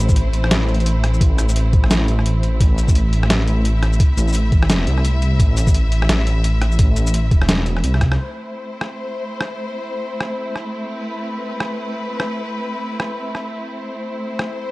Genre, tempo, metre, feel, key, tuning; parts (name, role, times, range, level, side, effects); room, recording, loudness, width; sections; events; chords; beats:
half-time drum and bass; 172 BPM; 4/4; swing 60% on 16ths, half-time; A minor; A4 = 440 Hz
clear studio string section; sustained chords; 0.0-14.7 s; A3 to E5; -26 LUFS; left 1 dB; vintage 12-bit sampler grit, sidechain pumping
dark detuned saw bass; bass; 0.0-8.2 s; E1 to C2; -16 LUFS; equal
boom bap sampler-style drum kit; drums; 0.1-14.4 s; hi-hat, rim click, shaker, snare drum; -22 LUFS; equal
electronic kick drum; drums; 0.1-8.1 s; -15 LUFS; equal
little or no reverb; dry, gritty hardware recording, cassette tape; -16 LUFS; side -21 dB against mid
0.0-8.2 A section; 8.2-14.7 B section
drop 0.0-8.2; drum fill 7.9; band accent 8.1
0.0 Am
0.16 0.51 0.86 | 1.21 1.56 1.91 2.25 | 2.60 2.95 3.30 3.65 | 4.00 4.35 4.70 5.04 | 5.39 5.74 6.09 6.44 | 6.79 7.14 7.49 7.84 | 8.19 8.53 8.88 9.23 | 9.58 9.93 10.28 10.63 | 10.98 11.32 11.67 12.02 | 12.37 12.72 13.07 13.42 | 13.77 14.12 14.46